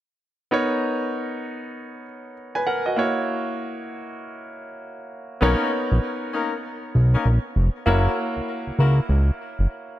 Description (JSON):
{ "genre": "R&B", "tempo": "98 BPM", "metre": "4/4", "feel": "swing 62% on 16ths", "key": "B major", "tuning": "A4 = 440 Hz", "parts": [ { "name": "bright concert grand piano", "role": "accompaniment", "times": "0.5-10.0 s", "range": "A#3 to G#5", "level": "-26 LUFS", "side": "right 1 dB", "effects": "none" }, { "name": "mellow horn section", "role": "stabs", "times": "5.4-9.0 s", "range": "A#3 to A#4", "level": "-27 LUFS", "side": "left 4 dB", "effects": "digital delay" }, { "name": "fat analog bass", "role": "bass", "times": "5.4-9.7 s", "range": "E#1 to C#2", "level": "-17 LUFS", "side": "equal", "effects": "none" } ], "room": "light reverb, small room ambience", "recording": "none", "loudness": "-20 LUFS", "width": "side -14 dB against mid", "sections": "0.5-10.0 A section", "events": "none", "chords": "0.5 Bmaj9; 3.0 F#7; 5.4 Bmaj9; 7.9 F#7" }